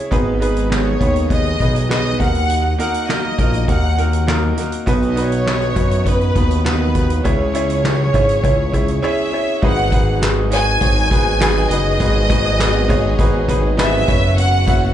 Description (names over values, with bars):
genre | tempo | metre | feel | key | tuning
piano-driven pop | 101 BPM | 4/4 | straight | G# minor | A4 = 440 Hz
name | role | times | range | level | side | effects
bright grand piano | accompaniment | 0.0-14.9 s | G#2 to E5 | -20 LUFS | right 2 dB | plate reverb, slapback echo
fat analog bass | bass | 0.1-14.9 s | F#1 to F#2 | -18 LUFS | equal | none
soft-mallet drum kit | drums | 0.1-14.8 s | crash cymbal, handclaps, hi-hat, kick drum, snare drum | -20 LUFS | equal | none
warm symphonic violin section | melody | 0.4-14.9 s | B4 to G#5 | -21 LUFS | equal | plate reverb, slapback echo, tape echo
dark studio string section | sustained chords | 9.6-14.9 s | C#3 to G#4 | -29 LUFS | left 3 dB | none
room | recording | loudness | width
light reverb | live gig heard through the venue's PA, club reverb, nothing above 10.6 kHz | -14 LUFS | side -11 dB against mid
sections
0.0-9.6 A section; 9.6-14.9 B section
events
none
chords
0.1 G#m; 2.2 D#m; 4.9 B; 7.3 C#m; 9.6 G#m7; 14.1 F#sus4